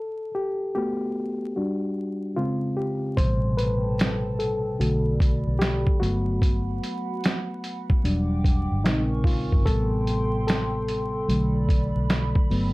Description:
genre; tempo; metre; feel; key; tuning
lo-fi hip hop; 74 BPM; 4/4; swing 65% on 16ths; A dorian; A4 = 439 Hz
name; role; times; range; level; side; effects
reed electric piano; accompaniment; 0.0-12.7 s; B2 to C5; -26 LUFS; left 1 dB; cassette tape, low-pass filter
dark analog pad; sustained chords; 3.2-12.7 s; F#4 to D6; -35 LUFS; right 2 dB; lush chorus, low-pass filter
vintage muted fingered electric bass; bass; 3.2-12.7 s; E1 to B1; -26 LUFS; equal; none
lo-fi sampler-style drum kit; drums; 3.2-12.7 s; hi-hat, kick drum, snare drum; -23 LUFS; equal; overdrive
room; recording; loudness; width
moderate studio reverb, RT60 0.5 s; dark, warm production, vinyl crackle; -22 LUFS; side -21 dB against mid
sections
0.0-12.7 A section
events
reed electric piano solo 0.0-12.7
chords
0.0 Gmaj7; 1.6 Dadd11/G; 2.4 C#maj7#11; 3.2 Am7; 4.8 Bm7; 6.0 Gmaj7; 8.0 Em9; 8.9 Bbm7; 9.7 Am7; 11.3 Bm7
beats
0.74 1.55 2.37 | 3.18 3.99 4.80 5.61 | 6.42 7.23 8.04 8.85 | 9.66 10.47 11.28 12.10

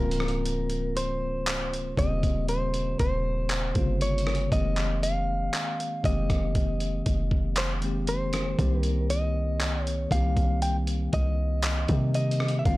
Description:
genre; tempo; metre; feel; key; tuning
contemporary R&B; 59 BPM; 4/4; straight; unclear; A4 = 442 Hz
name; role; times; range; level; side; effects
direct-recorded clean electric guitar; melody; 0.0-12.8 s; Bb4 to G5; -32 LUFS; equal; analog delay
bell-like tine electric piano; accompaniment; 0.0-12.8 s; C3 to G4; -32 LUFS; left 1 dB; fast stereo tremolo
warm 808-style bass; bass; 0.0-12.8 s; Db1 to C3; -28 LUFS; equal; none
dusty soul sampler-style drum kit; drums; 0.1-12.8 s; handclaps, hi-hat, kick drum, rim click; -29 LUFS; equal; none
room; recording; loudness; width
digital ambience; dry, gritty hardware recording; -24 LUFS; side -18 dB against mid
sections
0.0-12.8 A section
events
none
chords
0.0 Eb13; 4.5 Fm11; 8.6 Cm7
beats
| 0.45 1.47 2.48 3.50 | 4.52 5.54 6.55 7.57 | 8.59 9.60 10.62 11.64 | 12.65

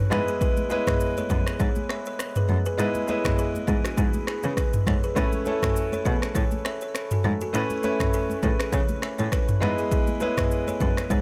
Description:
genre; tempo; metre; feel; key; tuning
afrobeats; 101 BPM; 4/4; swing 55% on 16ths; A major; A4 = 439 Hz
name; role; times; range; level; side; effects
clear concert grand piano; accompaniment; 0.0-11.2 s; G#3 to B4; -31 LUFS; equal; none
buzzing kalimba; riff; 0.1-11.2 s; D4 to E5; -34 LUFS; equal; delay
clear cello; bass; 0.1-11.2 s; F#2 to C#3; -29 LUFS; equal; none
deep house drum kit; drums; 0.1-11.2 s; finger snaps, kick drum, rim click, shaker, toms; -28 LUFS; equal; none
congas; percussion; 0.1-11.2 s; none; -38 LUFS; equal; none
room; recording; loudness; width
small room reverb; none; -25 LUFS; mono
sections
0.0-11.2 A section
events
none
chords
0.1 E; 5.2 Aadd9; 9.6 E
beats
| 0.41 1.01 1.60 2.19 | 2.79 3.38 3.98 4.57 | 5.16 5.76 6.35 6.95 | 7.54 8.13 8.73 9.32 | 9.92 10.51 11.11

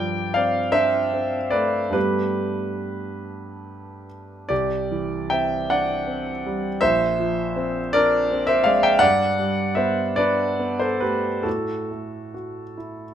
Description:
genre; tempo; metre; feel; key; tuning
classical, impressionist solo piano; 44-57 BPM (dotted quarters); 6/8; rubato; unclear; A4 = 439 Hz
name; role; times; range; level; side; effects
warm grand piano; solo; 0.0-13.1 s; Bb1 to G5; -20 LUFS; equal; none
room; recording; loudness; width
light reverb; close, detailed microphones; -19 LUFS; side -9 dB against mid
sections
0.0-13.1 A section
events
none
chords
0.0 G9sus4; 1.9 Gadd9; 4.5 Cadd9; 6.8 Bb9; 9.0 Gadd9; 11.5 A5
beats
0.74 | 1.95 3.23 | 4.50 5.70 | 6.81 7.95 | 9.02 10.18 | 11.45 12.78

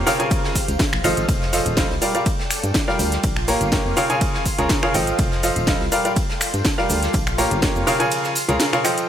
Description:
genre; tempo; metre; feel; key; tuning
piano house; 123 BPM; 4/4; straight; unclear; A4 = 439 Hz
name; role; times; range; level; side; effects
clear baby grand piano; riff; 0.0-9.1 s; Db3 to Bb5; -21 LUFS; equal; sidechain pumping, dub echo
solid FM bass; bass; 0.0-8.6 s; Eb1 to G2; -25 LUFS; equal; sidechain pumping
granular cloud pad; texture; 0.0-9.1 s; F4 to C6; -28 LUFS; equal; built-in reverb, sidechain pumping
house drum kit; drums; 0.1-9.1 s; cabasa, finger snaps, hi-hat, ride cymbal, snare drum; -25 LUFS; equal; overdrive
vintage brush drum kit; drums; 0.1-9.0 s; hi-hat, shaker, snare drum; -32 LUFS; equal; none
tambourine; percussion; 0.1-9.1 s; none; -36 LUFS; equal; none
electronic kick drum; drums; 0.3-7.7 s; none; -22 LUFS; equal; overdrive
room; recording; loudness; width
light reverb, small room ambience; none; -17 LUFS; side -10 dB against mid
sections
0.0-9.1 A section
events
drop 0.0-9.1; kick drops out 8.1-9.1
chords
0.3 Db6; 1.3 F7; 2.0 Gm7; 3.2 Bbm6; 4.2 Db6; 5.2 F7; 5.9 Gm7; 7.1 Bbm6; 8.1 Db6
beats
0.31 0.80 | 1.29 1.77 2.26 2.75 | 3.24 3.73 4.21 4.70 | 5.19 5.68 6.17 6.65 | 7.14 7.63 8.12 8.60

